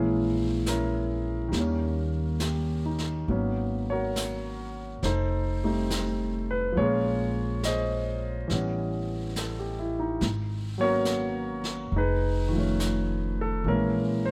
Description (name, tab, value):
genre	jazz ballad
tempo	69 BPM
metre	4/4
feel	swing 68% on 8ths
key	G# minor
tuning	A4 = 444 Hz
part	warm concert grand piano	accompaniment	0.0-14.3 s	D#3 to D#5	-30 LUFS	equal	none
part	upright bass	bass	0.0-14.3 s	F1 to D#2	-32 LUFS	equal	none
part	jazz brush drum kit	drums	0.7-14.3 s	brushed snare drum, hi-hat, snare drum	-40 LUFS	equal	none
room	light reverb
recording	none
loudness	-28 LUFS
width	mono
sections	0.0-14.3 A section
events	none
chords	0.0 A#m7b5; 1.5 D#7; 3.3 G#m11; 5.0 F7; 6.8 A#m9; 8.5 A9; 10.2 G#m11; 11.9 F7alt; 13.7 A#m7b5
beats	0.65 1.52 2.39 | 3.27 4.15 5.03 5.90 | 6.76 7.63 8.49 9.35 | 10.21 11.06 11.92 12.79 | 13.65